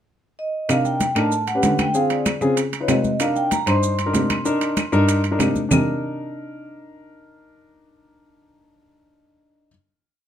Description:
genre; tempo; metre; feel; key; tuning
Afro-Cuban jazz; 191 BPM; 4/4; straight; C minor; A4 = 440 Hz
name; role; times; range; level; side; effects
vibraphone with soft mallets; melody; 0.4-5.4 s; Db5 to C6; -24 LUFS; right 2 dB; none
dark grand piano; accompaniment; 0.7-9.7 s; C4 to C5; -23 LUFS; left 1 dB; none
clear cello; bass; 0.7-9.0 s; G2 to D3; -23 LUFS; equal; none
claves; percussion; 0.7-5.8 s; none; -31 LUFS; left 9 dB; none
congas; percussion; 0.7-5.8 s; none; -25 LUFS; left 2 dB; none
maracas; percussion; 0.7-5.8 s; none; -33 LUFS; right 8 dB; none
timbales; percussion; 0.7-5.8 s; none; -27 LUFS; right 7 dB; none
room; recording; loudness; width
light reverb; minimal, uncompressed stereo recording; -18 LUFS; side -9 dB against mid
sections
0.0-0.7 pickup bar; 0.7-5.7 A section; 5.7-8.2 final chord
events
none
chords
0.0 N.C.; 0.7 Cm7; 1.3 A7; 1.9 Dm7b5; 2.6 Db9; 3.2 Cm7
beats
0.07 0.38 | 0.69 1.00 1.32 1.63 | 1.94 2.26 2.57 2.88 | 3.20 3.51 3.83 4.14 | 4.46 4.77 5.09 5.40 | 5.71 6.03 6.34 6.66 | 6.97 7.29 7.60 7.91

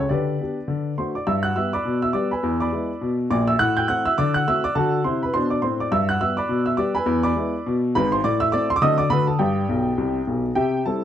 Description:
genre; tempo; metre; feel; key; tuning
jazz, stride piano; 207 BPM; 4/4; swing 59% on 8ths; G major; A4 = 440 Hz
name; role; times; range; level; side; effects
clear upright piano; solo; 0.0-11.0 s; G#1 to G6; -19 LUFS; equal; none
room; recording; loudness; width
moderate studio reverb, RT60 0.5 s; dark, warm production; -19 LUFS; side -10 dB against mid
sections
0.0-1.3 A section; 1.3-10.6 A section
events
upright piano fill 9.7-10.6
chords
0.1 G/D; 0.7 D; 1.3 G; 1.8 G/B; 2.4 E7; 3.6 Am; 4.2 D7; 4.8 D; 5.9 G; 6.5 G/B; 7.1 E7; 8.2 Am; 8.8 D7b9; 9.1 D; 9.4 G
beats
| 0.10 0.39 0.68 0.97 | 1.26 1.55 1.84 2.13 | 2.43 2.72 3.01 3.30 | 3.59 3.88 4.17 4.46 | 4.75 5.04 5.33 5.62 | 5.91 6.21 6.50 6.79 | 7.08 7.37 7.66 7.95 | 8.24 8.53 8.82 9.11 | 9.40 9.69 9.98 10.27 | 10.56 10.85

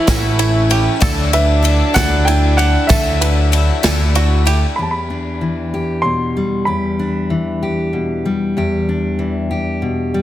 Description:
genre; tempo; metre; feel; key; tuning
indie folk with a building arrangement; 64 BPM (dotted quarters); 6/8; straight; E minor; A4 = 440 Hz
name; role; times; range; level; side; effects
mellow French horn; second line; 0.0-4.5 s; D4 to E4; -21 LUFS; right 3 dB; none
picked twelve-string acoustic guitar; accompaniment; 0.0-4.8 s; A2 to E4; -22 LUFS; left 8 dB; none
warm chamber string section; sustained chords; 0.0-4.7 s; A4 to D6; -30 LUFS; left 2 dB; none
bluegrass banjo; arpeggios; 0.0-4.8 s; E4 to B4; -24 LUFS; right 7 dB; slapback echo
upright bass; bass; 0.1-4.6 s; A1 to D2; -15 LUFS; equal; none
natural country drum kit; drums; 0.1-4.6 s; kick drum, ride cymbal, snare drum; -19 LUFS; equal; soft clipping on kick
tambourine; percussion; 0.1-4.1 s; none; -30 LUFS; right 4 dB; none
warm upright piano; melody; 1.3-8.2 s; E5 to C6; -21 LUFS; equal; none
fingerpicked steel-string acoustic guitar; accompaniment; 4.8-10.2 s; E2 to G4; -17 LUFS; left 2 dB; none
room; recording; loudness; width
light reverb, studio reverb; dense, heavily limited modern master; -14 LUFS; side -13 dB against mid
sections
0.0-4.8 A section; 4.8-10.2 B section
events
none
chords
0.0 A; 1.0 Dadd9; 4.8 Em7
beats
0.07 | 1.01 1.95 | 2.89 3.84 | 4.78 5.72 | 6.67 7.62 | 8.56 9.51

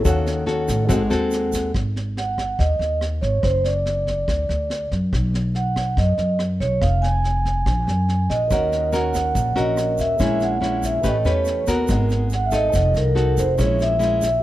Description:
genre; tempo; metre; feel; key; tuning
bossa nova; 142 BPM; 4/4; straight; G# minor; A4 = 440 Hz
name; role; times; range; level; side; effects
vibraphone with medium mallets; melody; 0.0-14.4 s; A#4 to Ab5; -22 LUFS; right 2 dB; none
dark concert grand piano; accompaniment; 0.0-1.8, 8.5-14.4 s; G#4 to A5; -32 LUFS; right 3 dB; none
nylon-string guitar; accompaniment; 0.0-1.7, 8.5-14.4 s; A#2 to B4; -23 LUFS; left 2 dB; none
upright bass; bass; 0.1-14.4 s; F1 to A2; -22 LUFS; equal; none
vintage brush drum kit; drums; 0.1-14.3 s; kick drum, rim click, snare drum; -27 LUFS; equal; none
egg shaker; percussion; 0.1-1.7, 8.5-14.4 s; none; -38 LUFS; right 5 dB; none
room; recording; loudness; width
light reverb; dark, warm production; -18 LUFS; side -14 dB against mid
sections
0.0-1.7 A section; 1.7-14.4 B section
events
none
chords
0.1 D#m7b5; 0.9 G#7b9; 1.7 G#5; 3.4 D/F#; 5.1 B; 6.8 Fm; 7.7 D#madd11/A#; 8.5 D#m7; 10.2 A#m7b5; 11.0 A9; 11.9 G#m9; 12.7 F7b9; 13.6 A#m7b5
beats
| 0.05 0.48 0.90 1.32 | 1.74 2.17 2.59 3.01 | 3.43 3.85 4.28 4.70 | 5.12 5.55 5.97 6.39 | 6.81 7.24 7.66 8.08 | 8.51 8.93 9.35 9.78 | 10.20 10.62 11.04 11.47 | 11.89 12.31 12.73 13.16 | 13.58 14.00 14.43

